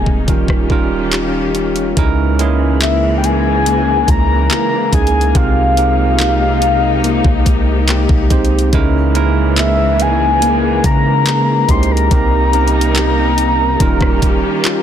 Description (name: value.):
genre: contemporary R&B.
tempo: 71 BPM.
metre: 4/4.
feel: straight.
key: unclear.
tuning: A4 = 441 Hz.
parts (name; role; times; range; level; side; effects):
soft octave-layered synth lead; melody; 0.0-14.8 s; Fb5 to C6; -17 LUFS; left 2 dB; chorus, phaser, tape echo.
bell-like tine electric piano; accompaniment; 0.0-14.8 s; G3 to C5; -19 LUFS; right 10 dB; none.
warm studio string section; sustained chords; 0.0-14.8 s; C3 to G4; -22 LUFS; left 2 dB; none.
fingerpicked plugged-in steel-string acoustic guitar; arpeggios; 0.0-14.8 s; C3 to Ab4; -21 LUFS; left 8 dB; none.
soft 808-style bass; bass; 0.0-14.4 s; Eb1 to Db3; -17 LUFS; equal; none.
smooth R&B drum kit; drums; 0.1-14.8 s; handclaps, hi-hat, kick drum, rim click; -16 LUFS; equal; none.
room: digital ambience.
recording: dense, heavily limited modern master.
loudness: -11 LUFS.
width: side -9 dB against mid.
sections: 0.0-2.0 A section; 2.0-14.8 B section.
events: none.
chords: 0.3 Eb9; 2.0 Dbm6; 5.3 Abmaj9/C; 8.7 Dbm6; 12.1 Cm7; 13.8 Eb9.